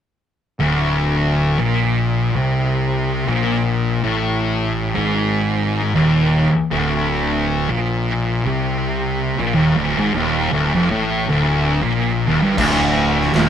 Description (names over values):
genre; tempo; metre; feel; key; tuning
stoner and doom metal; 78 BPM; 4/4; swing 59% on 8ths; unclear; A4 = 441 Hz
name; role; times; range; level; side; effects
thick fuzz guitar; riff; 0.6-13.5 s; D2 to C3; -19 LUFS; left 6 dB; distortion
thick fuzz guitar; riff; 0.6-13.5 s; D2 to C3; -20 LUFS; right 5 dB; distortion
fuzz fingered electric bass; bass; 0.6-13.5 s; D1 to C2; -25 LUFS; right 1 dB; overdrive
distorted electric guitar; riff; 12.6-13.5 s; D2 to Eb2; -22 LUFS; right 1 dB; distortion
raw garage drum kit; drums; 12.6-13.5 s; crash cymbal, kick drum, snare drum; -20 LUFS; right 1 dB; none
room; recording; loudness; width
moderate studio reverb, RT60 0.6 s; band playing live in one room; -16 LUFS; side -9 dB against mid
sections
0.4-12.6 A section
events
none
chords
0.4 D5; 12.6 N.C.